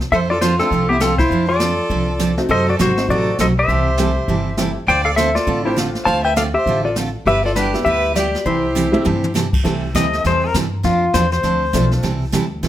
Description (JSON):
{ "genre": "country, western swing", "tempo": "201 BPM", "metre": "4/4", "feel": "swing 61% on 8ths", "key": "C major", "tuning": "A4 = 440 Hz", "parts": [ { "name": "jazz brush drum kit", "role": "drums", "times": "0.0-12.7 s", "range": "brushed snare drum, crash cymbal, hi-hat, kick drum, snare drum, toms", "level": "-24 LUFS", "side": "equal", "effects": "none" }, { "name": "clean lap steel guitar", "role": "melody", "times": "0.1-9.3 s", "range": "B3 to A5", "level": "-18 LUFS", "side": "left 2 dB", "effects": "none" }, { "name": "clear fiddle", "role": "second line", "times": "0.1-9.3 s", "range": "E4 to F5", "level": "-25 LUFS", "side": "right 4 dB", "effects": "none" }, { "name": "picked steel-string acoustic guitar", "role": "accompaniment", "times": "0.1-12.7 s", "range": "C3 to A4", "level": "-22 LUFS", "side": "right 4 dB", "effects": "none" }, { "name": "upright bass", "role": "bass", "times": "0.1-12.7 s", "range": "G1 to G2", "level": "-22 LUFS", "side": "equal", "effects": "none" }, { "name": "honky-tonk upright piano", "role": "accompaniment", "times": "0.6-12.0 s", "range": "G3 to A4", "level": "-24 LUFS", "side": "left 1 dB", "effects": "none" }, { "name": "pedal steel guitar", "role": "second line", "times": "10.0-11.9 s", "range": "F4 to Eb5", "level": "-18 LUFS", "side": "left 4 dB", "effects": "none" } ], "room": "moderate studio reverb, RT60 0.8 s", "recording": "none", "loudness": "-15 LUFS", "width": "side -12 dB against mid", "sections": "0.0-9.7 A section; 9.7-12.7 B section", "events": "drum fill 8.8-9.4; pedal steel guitar solo 9.7-12.7", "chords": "0.1 F6; 2.5 F#dim7; 3.7 C6; 4.9 Dm7; 7.3 G6; 8.5 C6; 10.8 F6; 12.0 C6" }